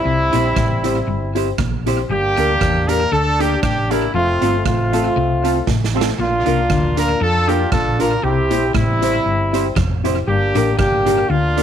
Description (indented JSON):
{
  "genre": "ska",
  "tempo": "117 BPM",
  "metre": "4/4",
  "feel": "swing 55% on 8ths",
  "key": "unclear",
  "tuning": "A4 = 440 Hz",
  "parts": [
    { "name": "clear horn section", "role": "melody", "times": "0.0-11.6 s", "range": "G3 to Bb4", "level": "-18 LUFS", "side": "equal", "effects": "none" },
    { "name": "electric guitar at the edge of break-up", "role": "riff", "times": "0.1-11.5 s", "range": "F2 to F3", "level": "-27 LUFS", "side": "left 8 dB", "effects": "tremolo, tape echo" },
    { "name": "hollow-body short-scale fingered electric bass", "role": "bass", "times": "0.1-11.6 s", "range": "F1 to F2", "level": "-21 LUFS", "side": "equal", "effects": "tube saturation" },
    { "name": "hollow-body jazz guitar", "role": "accompaniment", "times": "0.3-11.6 s", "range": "C4 to C5", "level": "-25 LUFS", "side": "right 12 dB", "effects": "none" },
    { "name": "dark upright piano", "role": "stabs", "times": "0.3-11.6 s", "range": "A3 to C5", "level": "-25 LUFS", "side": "left 12 dB", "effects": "none" },
    { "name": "street-band drum kit", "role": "drums", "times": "0.3-11.6 s", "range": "hi-hat, kick drum, rim click, snare drum", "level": "-23 LUFS", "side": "right 3 dB", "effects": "tape echo" }
  ],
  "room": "light reverb, small room ambience",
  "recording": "1960s-style stereo with parts hard left and right",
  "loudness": "-15 LUFS",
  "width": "side -9 dB against mid",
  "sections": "0.0-11.6 A section",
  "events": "drum fill 5.7-6.2",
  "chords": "0.1 C; 2.1 Gm; 4.1 F; 6.2 Bb; 8.2 C; 10.3 Gm",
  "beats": "| 0.05 0.56 1.07 1.59 | 2.10 2.61 3.12 3.63 | 4.14 4.66 5.17 5.68 | 6.19 6.70 7.21 7.72 | 8.23 8.74 9.25 9.76 | 10.28 10.79 11.30"
}